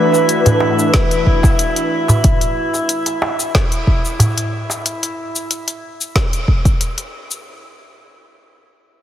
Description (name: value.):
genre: organic downtempo.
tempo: 92 BPM.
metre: 4/4.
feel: straight.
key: unclear.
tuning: A4 = 440 Hz.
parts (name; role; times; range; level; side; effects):
airy breathy pad; sustained chords; 0.0-2.2 s; E3 to B4; -18 LUFS; equal; chorus, phaser, sidechain pumping.
drifting glass-harmonics texture; texture; 0.0-4.9 s; E4 to E5; -21 LUFS; left 1 dB; chorus, built-in reverb.
afro-pop drum kit; drums; 0.1-7.4 s; cabasa, hi-hat, snare drum; -21 LUFS; left 1 dB; none.
darbuka; percussion; 0.1-4.8 s; none; -18 LUFS; right 1 dB; none.
electronic kick drum; drums; 0.9-6.8 s; none; -14 LUFS; equal; none.
room: moderate huge ambient reverb, RT60 4.8 s.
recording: heavily compressed radio sound.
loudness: -14 LUFS.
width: side -11 dB against mid.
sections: 0.0-7.5 A section; 7.5-9.0 B section.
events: none.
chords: 0.0 E9sus4; 7.5 N.C..